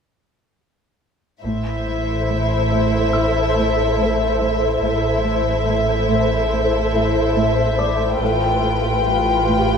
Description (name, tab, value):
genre	cinematic, suspense film score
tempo	71 BPM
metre	4/4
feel	straight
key	A minor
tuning	A4 = 440 Hz
part	warm studio violin section	melody	1.4-9.8 s	E5 to G5	-24 LUFS	left 4 dB	none
part	dark studio violin section	second line	1.4-9.8 s	E4 to C5	-22 LUFS	left 2 dB	none
part	flickering grainy texture	sustained chords	2.1-9.8 s	G4 to F5	-22 LUFS	right 1 dB	built-in reverb
part	warm studio cello section	riff	1.4-9.7 s	A2 to A3	-26 LUFS	right 2 dB	none
part	dark studio double bass section	bass	1.4-9.8 s	A1	-27 LUFS	right 3 dB	none
part	warm studio cello section	bass	1.4-9.8 s	A2	-27 LUFS	right 2 dB	none
part	pure sine sub bass	drone	1.4-9.8 s	A1	-26 LUFS	equal	none
part	clear grand piano	texture	3.1-9.8 s	D5 to E6	-31 LUFS	left 2 dB	none
room	wet scoring stage reverb, RT60 1.8 s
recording	minimal, uncompressed stereo recording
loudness	-16 LUFS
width	side -6 dB against mid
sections	1.4-9.8 A section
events	none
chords	1.4 Am; 8.2 G7/A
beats	| 1.44 2.29 3.13 3.98 | 4.82 5.67 6.51 7.36 | 8.21 9.05